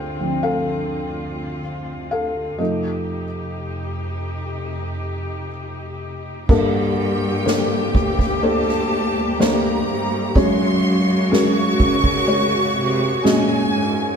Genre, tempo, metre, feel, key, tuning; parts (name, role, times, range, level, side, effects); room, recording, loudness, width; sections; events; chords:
pop ballad; 62 BPM; 4/4; straight; A4 = 445 Hz
felt-muted upright piano; accompaniment; 0.0-14.2 s; G2 to G5; -21 LUFS; left 1 dB
warm studio string section; sustained chords; 0.0-14.2 s; D2 to Db5; -26 LUFS; left 1 dB
rich studio violin section; second line; 6.5-14.2 s; G5 to Db6; -25 LUFS; right 1 dB
clear symphonic cello section; bass; 6.5-14.2 s; D2 to Db3; -23 LUFS; right 1 dB
soft-mallet drum kit; drums; 6.5-13.9 s; crash cymbal, kick drum, ride cymbal, snare drum; -23 LUFS; right 1 dB
moderate stone room reverb, RT60 1.3 s; band playing live in one room; -18 LUFS; side -6 dB against mid
0.0-6.5 A section; 6.5-14.2 B section
felt piano solo 0.0-6.5
0.0 Dm7; 2.6 F7; 6.5 Gmadd9; 10.4 Gbsus2